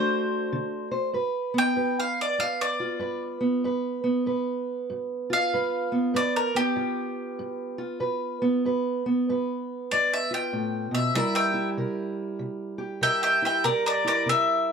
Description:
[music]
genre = acoustic country blues, solo or duo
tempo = 96 BPM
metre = 4/4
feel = swing 63% on 8ths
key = G mixolydian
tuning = A4 = 441 Hz
[part]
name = bowl-back mandolin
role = melody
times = 0.0-14.7 s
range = G4 to G5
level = -24 LUFS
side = left 1 dB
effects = plate reverb
[part]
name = fingerpicked steel-string acoustic guitar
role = accompaniment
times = 0.0-14.7 s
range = G2 to C5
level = -27 LUFS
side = right 2 dB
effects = none
[sound]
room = moderate studio reverb, RT60 0.6 s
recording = dark, warm production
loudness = -24 LUFS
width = side -6 dB against mid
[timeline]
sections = 0.0-1.1 A section; 1.1-14.7 B section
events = mandolin solo 1.1-14.7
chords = 0.0 D7; 1.1 G7; 11.2 C7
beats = 0.52 | 1.15 1.77 2.40 3.02 | 3.65 4.28 4.90 5.53 | 6.16 6.78 7.41 8.03 | 8.66 9.28 9.91 10.53 | 11.16 11.78 12.40 13.03 | 13.65 14.28

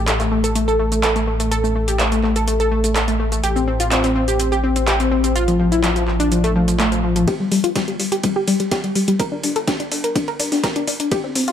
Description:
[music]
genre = progressive house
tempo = 125 BPM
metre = 4/4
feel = straight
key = unclear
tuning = A4 = 441 Hz
[part]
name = analog pluck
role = arpeggios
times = 0.0-11.5 s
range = F3 to Bb4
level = -18 LUFS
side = left 1 dB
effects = chorus, sidechain pumping, ping-pong delay
[part]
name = dark detuned saw bass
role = bass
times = 0.0-11.5 s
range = G1 to G2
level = -23 LUFS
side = equal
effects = sidechain pumping, high-pass filter
[part]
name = deep house drum kit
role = drums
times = 0.1-11.5 s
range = handclaps, hi-hat, shaker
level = -23 LUFS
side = right 1 dB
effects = overdrive, small room ambience
[part]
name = breakbeat sampler-style drum kit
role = drums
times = 7.3-11.5 s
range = hi-hat, ride cymbal, snare drum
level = -29 LUFS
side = right 1 dB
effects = high-pass filter on cymbals, small room ambience, high-pass filter on hats, high-pass filter on snare, high-pass filter on room
[part]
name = electronic kick drum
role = drums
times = 7.3-11.2 s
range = none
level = -25 LUFS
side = equal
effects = overdrive, high-pass filter on kick, small room ambience
[sound]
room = light reverb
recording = dark, warm production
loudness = -16 LUFS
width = side -9 dB against mid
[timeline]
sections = 0.0-7.3 A section; 7.3-11.5 B section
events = build-up 7.3-11.5; filter sweep on synth pluck 7.3-11.5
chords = 0.0 N.C.; 3.4 F/A; 7.3 G5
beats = 0.07 0.56 1.03 | 1.51 2.00 2.48 2.96 | 3.44 3.92 4.39 4.88 | 5.36 5.83 6.32 6.79 | 7.28 7.75 8.23 8.71 | 9.20 9.68 10.15 10.63 | 11.12

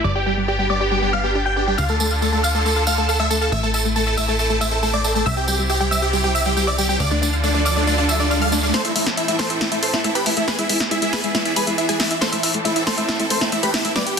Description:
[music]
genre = uplifting trance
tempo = 138 BPM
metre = 4/4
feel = straight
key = A minor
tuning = A4 = 440 Hz
[part]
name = big supersaw lead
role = melody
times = 0.0-14.2 s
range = D4 to G5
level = -21 LUFS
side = equal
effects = low-pass filter, ping-pong delay
[part]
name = wide unison pluck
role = second line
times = 0.0-14.2 s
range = D5 to G6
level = -29 LUFS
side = equal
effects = ping-pong delay
[part]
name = clear studio string section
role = sustained chords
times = 0.0-14.2 s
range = E2 to A4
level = -27 LUFS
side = right 2 dB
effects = none
[part]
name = analog pluck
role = arpeggios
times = 0.0-14.2 s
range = G3 to F5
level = -27 LUFS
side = left 3 dB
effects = ensemble chorus, ping-pong delay
[part]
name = plucky analog bass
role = bass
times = 0.0-8.7 s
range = G1 to D2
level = -22 LUFS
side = equal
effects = tube saturation
[part]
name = tambourine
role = percussion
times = 1.8-8.7 s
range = none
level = -26 LUFS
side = right 3 dB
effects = none
[part]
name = riser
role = sound effects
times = 6.3-8.7 s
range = none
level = -29 LUFS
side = right 4 dB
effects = none
[part]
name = punchy analog drum machine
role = drums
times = 8.7-14.2 s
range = hi-hat, snare drum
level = -22 LUFS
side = left 1 dB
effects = low-pass filter on cymbals, low-pass filter on snare, low-pass filter on hats
[sound]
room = light reverb, digital ambience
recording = dense, heavily limited modern master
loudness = -17 LUFS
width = side -6 dB against mid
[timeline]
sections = 0.0-8.7 A section; 8.7-14.2 B section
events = filter sweep on synth pluck 0.0-8.7, 8.7-14.2; riser 6.3-8.7; build-up 8.7-14.2; drum fill 8.7-14.2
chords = 0.0 G; 1.8 Dm; 3.5 Am; 5.3 C; 7.0 Dm; 8.7 Am; 10.5 E; 12.2 Am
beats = | 0.04 0.48 0.91 1.35 | 1.78 2.22 2.65 3.09 | 3.52 3.96 4.39 4.83 | 5.26 5.70 6.13 6.57 | 7.00 7.44 7.87 8.30 | 8.74 9.18 9.61 10.04 | 10.48 10.91 11.35 11.78 | 12.22 12.65 13.09 13.52 | 13.96

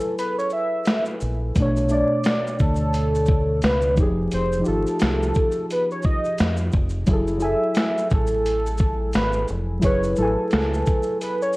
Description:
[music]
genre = lo-fi hip hop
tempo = 87 BPM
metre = 4/4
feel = swing 58% on 16ths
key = unclear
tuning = A4 = 440 Hz
[part]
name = warm velvety synth lead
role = melody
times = 0.0-11.6 s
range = A4 to E5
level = -24 LUFS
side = equal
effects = chorus, low-pass filter
[part]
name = muted felt-like synth keys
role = accompaniment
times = 0.0-11.6 s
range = B2 to G#5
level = -25 LUFS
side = equal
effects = chorus, cassette tape, low-pass filter
[part]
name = dusty soul sampler-style drum kit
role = drums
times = 0.0-11.6 s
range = finger snaps, hi-hat, kick drum, shaker, snare drum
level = -22 LUFS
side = equal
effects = none
[part]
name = deep dub fingered electric bass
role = bass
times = 1.2-10.8 s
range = F1 to F2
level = -24 LUFS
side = equal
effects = none
[sound]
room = moderate studio reverb, RT60 0.5 s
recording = worn, warbling old tape, cassette tape, vinyl crackle, warbly pitch drift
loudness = -19 LUFS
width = side -21 dB against mid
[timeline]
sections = 0.0-7.1 A section; 7.1-11.6 A section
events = none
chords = 0.0 F#m9; 1.6 Bm9; 4.0 Fm9; 7.1 F#m9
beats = 0.18 0.87 | 1.56 2.25 2.94 3.63 | 4.32 5.01 5.70 6.39 | 7.08 7.77 8.46 9.15 | 9.84 10.53 11.22

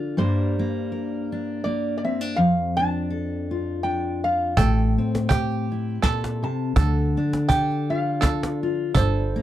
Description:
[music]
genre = acoustic folk duo or small band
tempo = 82 BPM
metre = 3/4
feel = swing 55% on 8ths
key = unclear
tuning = A4 = 439 Hz
[part]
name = fingerpicked steel-string acoustic guitar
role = accompaniment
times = 0.0-9.4 s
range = F2 to Bb4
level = -24 LUFS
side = left 2 dB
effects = none
[part]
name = lap resonator guitar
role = melody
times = 0.2-9.4 s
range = C5 to A5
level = -27 LUFS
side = right 1 dB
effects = none
[part]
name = bluegrass banjo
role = arpeggios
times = 4.6-9.4 s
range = G4 to A4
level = -30 LUFS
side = right 9 dB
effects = none
[part]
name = upright bass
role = bass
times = 4.6-9.3 s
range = G1 to D2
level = -23 LUFS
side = right 1 dB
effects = none
[part]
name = soft brush drum kit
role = drums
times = 4.6-9.1 s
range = hi-hat, kick drum, snare drum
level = -25 LUFS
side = right 1 dB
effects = none
[part]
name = cajon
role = percussion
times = 4.6-9.4 s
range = none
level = -23 LUFS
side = equal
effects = none
[sound]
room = little or no reverb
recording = dry, close 1970s-style studio recording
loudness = -21 LUFS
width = side -12 dB against mid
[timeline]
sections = 0.0-9.4 A section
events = none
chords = 0.2 Gm; 2.4 Dm/F; 4.6 Am7; 6.8 Dm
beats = | 0.18 0.92 1.65 | 2.38 3.11 3.84 | 4.57 5.30 6.03 | 6.76 7.49 8.22 | 8.95

